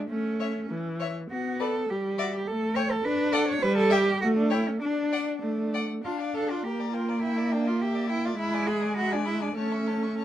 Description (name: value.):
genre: quick classical-period movement for string quartet.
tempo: 102 BPM.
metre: 2/4.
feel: rubato.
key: D major.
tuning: A4 = 441 Hz.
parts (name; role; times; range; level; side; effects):
rich viola; accompaniment; 0.1-10.2 s; E3 to D4; -27 LUFS; equal; none.
rich cello; bass; 0.1-10.2 s; C#4 to C#5; -29 LUFS; right 3 dB; none.
clear violin; melody; 0.4-10.2 s; D5 to C#6; -36 LUFS; left 10 dB; none.
rich violin; second line; 0.4-10.2 s; Bb4 to F5; -35 LUFS; left 4 dB; none.
room: light reverb.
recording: dark, warm production.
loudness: -25 LUFS.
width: side -12 dB against mid.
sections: 0.0-6.0 A section; 6.0-10.2 A section.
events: none.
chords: 0.1 A; 1.3 Bm; 1.9 Em7/G; 2.5 A7; 3.1 D; 3.6 Em/G; 4.2 A7; 4.8 D; 6.0 Dm; 6.6 Gm/Bb; 7.2 Em7b5/Bb; 8.4 E7/G#; 9.6 A.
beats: | 0.10 0.70 | 1.31 1.90 | 2.48 3.05 | 3.62 4.21 | 4.82 5.43 | 6.05 6.64 | 7.22 7.80 | 8.38 8.97 | 9.57 10.17.